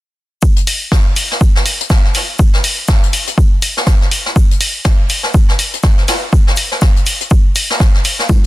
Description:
piano house; 122 BPM; 4/4; swing 58% on 16ths
electronic kick drum; drums; 0.4-8.4 s; -10 LUFS; equal
jazz brush drum kit; drums; 0.4-8.5 s; hi-hat, shaker, snare drum; -20 LUFS; left 1 dB; high-pass filter on hats, soft clipping on snare, high-pass filter on snare, high-pass filter on perc, high-pass filter on room
electronic hi-hat; drums; 0.7-8.2 s; -17 LUFS; left 1 dB
congas and tambourine; percussion; 8.3-8.4 s; -19 LUFS; left 2 dB
studio ambience; dense, heavily limited modern master; -10 LUFS; side -17 dB against mid
0.4-8.5 A section

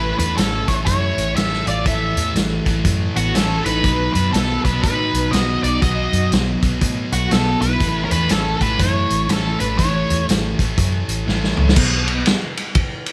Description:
blues rock power trio and southern rock; 121 BPM; 4/4; swing 62% on 8ths; A4 = 439 Hz
octave-fuzz lead guitar; melody; 0.0-10.2 s; F#4 to E5; -24 LUFS; equal; wah, distortion
lead guitar through a small cranked amp; second line; 0.0-10.2 s; A3 to A4; -31 LUFS; equal; overdrive
sludgy distorted guitar; riff; 0.0-12.3 s; A2 to B3; -25 LUFS; equal; overdrive
vintage muted picked electric bass; bass; 0.0-12.2 s; A1 to A2; -24 LUFS; equal
vintage drum kit; drums; 0.2-13.1 s; crash cymbal, hi-hat, kick drum, ride cymbal, snare drum, toms; -23 LUFS; equal
light reverb; -18 LUFS; mono
0.0-11.8 A section; 11.8-13.1 B section
drum fill 11.3-11.8
0.0 A; 3.8 B; 7.8 A; 11.8 N.C.

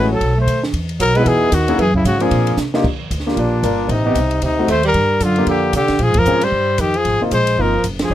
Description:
jazz, small-group swing and bop; 228 BPM; 4/4; swing 59% on 8ths; Eb major; A4 = 442 Hz
warm trumpet; melody; 0.0-8.1 s; D4 to C5; -18 LUFS; left 3 dB
breathy tenor saxophone; second line; 0.0-8.1 s; Bb2 to A3; -21 LUFS; right 5 dB
warm baby grand piano; accompaniment; 0.0-8.1 s; A3 to Bb4; -20 LUFS; left 2 dB
upright bass; bass; 0.0-8.1 s; F1 to B#2; -19 LUFS; equal
compact cocktail drum kit; drums; 0.2-8.0 s; crash cymbal, hi-hat, kick drum, ride cymbal, snare drum; -25 LUFS; right 1 dB
little or no reverb; -14 LUFS; side -12 dB against mid
0.0-2.8 A section; 2.8-8.1 B section
drum fill 2.6; band accent 6.1, 8.0
0.2 B7b9; 0.7 Emaj9; 1.8 F#add9; 2.3 A#9; 2.8 Ebmaj9; 3.9 Am7b5; 4.4 D7b9; 5.0 Gm7; 6.0 Bbm7; 6.5 F7sus2; 7.1 Ab69

